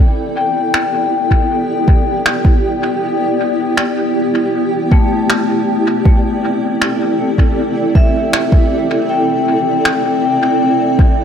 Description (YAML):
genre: ambient dub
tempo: 79 BPM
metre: 4/4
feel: straight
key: E minor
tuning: A4 = 440 Hz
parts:
  - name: granular cloud pad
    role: sustained chords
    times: 0.0-11.2 s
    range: B3 to G5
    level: -16 LUFS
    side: right 1 dB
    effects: built-in reverb
  - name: vibraphone with medium hard mallets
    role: arpeggios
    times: 0.4-11.2 s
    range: A3 to G5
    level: -19 LUFS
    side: left 5 dB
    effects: low-pass filter, dub echo
  - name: electronic finger snaps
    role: drums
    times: 0.7-10.0 s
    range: none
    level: -19 LUFS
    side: equal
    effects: dub echo
  - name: electronic kick drum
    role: drums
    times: 1.3-11.1 s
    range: none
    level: -11 LUFS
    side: equal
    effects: none
room: moderate echo chamber reverb, RT60 2.3 s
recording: echo-heavy mix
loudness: -12 LUFS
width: side -8 dB against mid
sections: 0.0-11.2 A section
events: none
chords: 0.0 Em7; 6.1 D9sus4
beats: 0.74 1.50 2.26 | 3.02 3.78 4.54 5.30 | 6.06 6.82 7.58 8.33 | 9.09 9.85 10.61